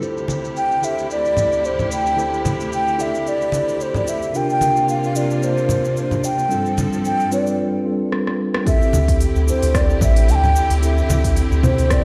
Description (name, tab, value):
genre	sunset chillout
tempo	111 BPM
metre	4/4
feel	swing 55% on 16ths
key	D minor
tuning	A4 = 440 Hz
part	mellow tine electric piano	accompaniment	0.0-12.0 s	C3 to D5	-26 LUFS	equal	delay
part	rich studio string section	sustained chords	0.0-12.0 s	D2 to A4	-29 LUFS	equal	low-pass filter
part	deep house drum kit	drums	0.0-12.0 s	cabasa, congas, hi-hat, rim click	-29 LUFS	equal	low-pass filter on perc, low-pass filter on snare, low-pass filter on hats, low-pass filter on room
part	congas	percussion	0.3-11.2 s	none	-26 LUFS	equal	none
part	mellow hollow wooden flute	melody	0.6-12.0 s	C5 to A5	-23 LUFS	equal	digital delay
part	electronic kick drum	drums	8.7-12.0 s	none	-21 LUFS	equal	none
part	warm sub bass	bass	8.9-12.0 s	A1 to D2	-19 LUFS	equal	none
room	light reverb, digital ambience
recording	played on a big sound system in a bare room, stone room reverb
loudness	-19 LUFS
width	mono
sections	0.0-8.7 A section; 8.7-12.0 B section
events	filter sweep on drum 0.0-8.7; drum fill 8.1-8.7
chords	0.0 D9sus4; 4.3 C9sus4; 6.5 G9sus4; 8.7 D9sus4